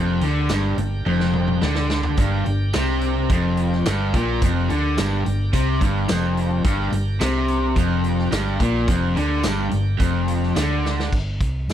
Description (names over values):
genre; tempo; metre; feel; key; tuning
classic rock; 107 BPM; 4/4; straight; G minor; A4 = 440 Hz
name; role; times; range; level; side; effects
bright tonewheel organ; sustained chords; 0.0-11.1 s; Bb3 to G5; -35 LUFS; right 3 dB; overdrive, slow rotary speaker
overdriven semi-hollow guitar; riff; 0.0-11.1 s; F2 to D3; -23 LUFS; left 6 dB; none
raw garage guitar; riff; 0.0-11.1 s; F2 to D3; -26 LUFS; right 12 dB; overdrive
hollow-body short-scale fingered electric bass; bass; 0.0-11.7 s; F1 to F2; -23 LUFS; right 1 dB; none
raw garage drum kit; drums; 0.2-11.7 s; crash cymbal, hi-hat, kick drum, snare drum, tambourine, toms; -25 LUFS; equal; none
room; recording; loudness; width
small room reverb; dry, close 1970s-style studio recording; -18 LUFS; side -10 dB against mid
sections
0.0-11.1 A section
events
drum fill 1.1-2.2, 10.8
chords
0.0 Gm; 11.1 N.C.